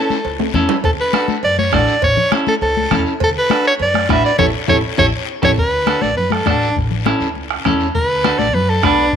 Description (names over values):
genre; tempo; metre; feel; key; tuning
latin, cumbia; 203 BPM; 4/4; straight; D major; A4 = 440 Hz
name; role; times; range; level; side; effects
bright soprano saxophone; melody; 0.0-9.1 s; D4 to E5; -17 LUFS; right 1 dB; none
clean electric guitar; accompaniment; 0.0-9.0 s; C#4 to B4; -20 LUFS; right 1 dB; none
congas; percussion; 0.1-9.2 s; none; -22 LUFS; left 12 dB; none
guiro; percussion; 0.1-9.2 s; none; -29 LUFS; left 14 dB; none
upright bass; bass; 0.2-9.2 s; A1 to F#2; -22 LUFS; equal; none
cowbell and timbales; percussion; 0.2-5.5 s; none; -25 LUFS; right 13 dB; none
bombo; percussion; 0.8-9.2 s; none; -21 LUFS; right 1 dB; none
room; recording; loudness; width
moderate plate reverb, RT60 3.3 s; 1960s-style stereo with parts hard left and right; -13 LUFS; side -8 dB against mid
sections
0.0-5.6 A section; 5.6-9.2 B section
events
drum fill 0.4-0.8, 4.4-5.6; band accent 4.4-5.6; soprano saxophone solo 5.6-9.2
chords
0.0 A; 0.8 D; 2.0 A; 3.2 D; 4.4 A7(no3); 5.6 D; 6.8 A; 7.9 D